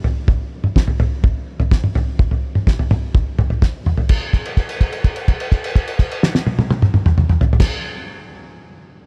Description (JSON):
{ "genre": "rock", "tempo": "126 BPM", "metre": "4/4", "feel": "straight", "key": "none", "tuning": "none", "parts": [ { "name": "cloth-damped thuddy drum kit", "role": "drums", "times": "0.0-7.7 s", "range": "crash cymbal, kick drum, snare drum, toms", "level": "-18 LUFS", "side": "equal", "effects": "none" } ], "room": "little or no reverb", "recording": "none", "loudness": "-18 LUFS", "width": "mono", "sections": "0.0-4.1 A section; 4.1-7.9 B section", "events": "drum fill 3.6-4.1; held note 4.1-7.6", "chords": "none" }